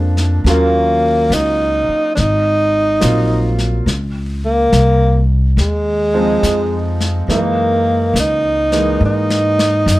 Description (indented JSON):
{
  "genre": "jazz ballad",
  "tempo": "70 BPM",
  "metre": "4/4",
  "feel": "swing 66% on 8ths",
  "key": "unclear",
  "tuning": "A4 = 439 Hz",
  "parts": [
    { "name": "breathy tenor saxophone", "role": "melody", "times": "0.0-10.0 s", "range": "Ab3 to Eb4", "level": "-15 LUFS", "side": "equal", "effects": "none" },
    { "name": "warm concert grand piano", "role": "accompaniment", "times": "0.0-10.0 s", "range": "E3 to F4", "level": "-20 LUFS", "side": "right 2 dB", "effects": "none" },
    { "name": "upright bass", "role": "bass", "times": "0.0-10.0 s", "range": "Ab1 to G#2", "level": "-16 LUFS", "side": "equal", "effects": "none" },
    { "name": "vintage brush drum kit", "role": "drums", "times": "0.2-10.0 s", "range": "brushed snare drum, hi-hat, snare drum", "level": "-22 LUFS", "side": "left 2 dB", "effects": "none" }
  ],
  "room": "light reverb",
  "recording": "none",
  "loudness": "-12 LUFS",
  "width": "side -17 dB against mid",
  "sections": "0.0-10.0 A section",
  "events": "drum fill 9.0-9.9",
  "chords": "0.5 Ebm9; 2.2 Ab13; 3.9 Dbmaj9; 7.3 F#13"
}